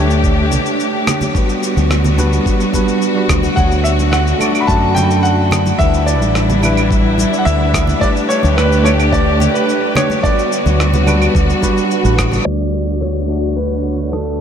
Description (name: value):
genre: sunset chillout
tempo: 108 BPM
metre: 4/4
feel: straight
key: D major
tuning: A4 = 439 Hz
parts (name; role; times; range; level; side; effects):
- barky tine electric piano; accompaniment; 0.0-14.4 s; G3 to D5; -19 LUFS; moving between left 3 dB and right 4 dB; auto-pan, low-pass filter, tape echo
- rich chamber string section; sustained chords; 0.0-14.4 s; D3 to G4; -19 LUFS; left 1 dB; none
- fretless electric bass; bass; 0.0-14.4 s; A1 to F#2; -16 LUFS; equal; analog chorus
- electronic cabasa, rim click and claves; drums; 0.1-14.2 s; none; -23 LUFS; equal; none
- electronic kick drum; drums; 0.2-12.3 s; none; -17 LUFS; equal; none
- congas; percussion; 0.5-12.4 s; none; -26 LUFS; right 2 dB; none
- clear baby grand piano; melody; 3.6-14.4 s; A4 to B5; -19 LUFS; equal; diffuse ambient delay
room: wet huge ambient reverb, RT60 7.9 s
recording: dreamy mix soaked in reverb, low-pass filter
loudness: -12 LUFS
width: side -8 dB against mid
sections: 0.0-12.5 A section; 12.5-14.4 B section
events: band accent 12.2; filter sweep 12.5-14.4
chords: 0.0 A9sus4/D; 1.4 Gmaj7/D; 3.6 Dmaj7; 5.8 Em7; 8.0 A9sus4/D; 10.2 Gmaj7/D; 12.5 Dmaj7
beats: 0.24 0.80 | 1.35 1.91 2.46 3.02 | 3.57 4.13 4.68 5.24 | 5.79 6.35 6.91 7.46 | 8.02 8.57 9.13 9.68 | 10.24 10.79 11.35 11.91 | 12.46 13.02 13.57 14.13